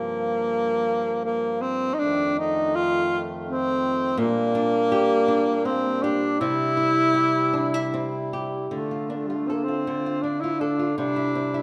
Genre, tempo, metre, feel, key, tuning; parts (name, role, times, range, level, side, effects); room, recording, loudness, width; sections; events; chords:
celtic folk, Celtic slow air; 80 BPM; 3/4; uneven beats, rubato; D minor; A4 = 438 Hz
mellow tenor saxophone; melody; 0.0-11.6 s; G3 to F4; -25 LUFS; equal
flamenco guitar; accompaniment; 0.0-0.3, 4.2-11.6 s; Bb2 to A4; -30 LUFS; equal
mellow accordion; sustained chords; 0.0-11.6 s; F2 to F4; -34 LUFS; equal
moderate concert hall reverb, RT60 2.4 s; -24 LUFS; mono
0.0-8.7 A section; 8.7-11.6 B section
0.0 Gm7; 2.0 F7; 4.2 Bb6; 6.4 C; 8.7 Dm; 11.0 C